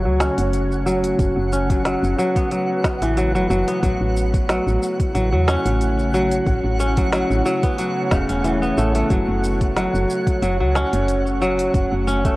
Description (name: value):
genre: organic downtempo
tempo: 91 BPM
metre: 4/4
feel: swing 54% on 16ths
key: F# minor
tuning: A4 = 440 Hz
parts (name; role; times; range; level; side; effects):
- ethereal airy pad; sustained chords; 0.0-12.4 s; C#3 to C#5; -27 LUFS; right 1 dB; ensemble chorus, built-in reverb, phaser, sidechain pumping, shimmer reverb
- kora; arpeggios; 0.0-12.4 s; C#3 to C#4; -20 LUFS; equal; low-pass filter, tape echo, shimmer reverb
- woody FM bass; bass; 0.0-12.4 s; E1 to E2; -22 LUFS; equal; tube saturation, sidechain pumping
- twinkling granular texture; texture; 0.0-12.4 s; F#5; -31 LUFS; right 2 dB; built-in reverb, shimmer reverb
- organic electronic drum kit; drums; 0.2-12.4 s; hi-hat, shaker, snare drum, woodblock; -28 LUFS; equal; overdrive
- electronic kick drum; drums; 1.2-12.4 s; none; -20 LUFS; equal; none
room: moderate huge ambient reverb, RT60 5.0 s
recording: worn, warbling old tape, cassette tape, warbly pitch drift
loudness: -17 LUFS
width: side -19 dB against mid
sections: 0.0-12.4 A section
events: filter sweep on kora 0.0-12.4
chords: 0.0 F#m; 3.8 A; 9.1 F#m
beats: 0.53 | 1.19 1.85 2.51 3.17 | 3.83 4.49 5.15 5.81 | 6.47 7.13 7.79 8.45 | 9.11 9.76 10.42 11.08 | 11.74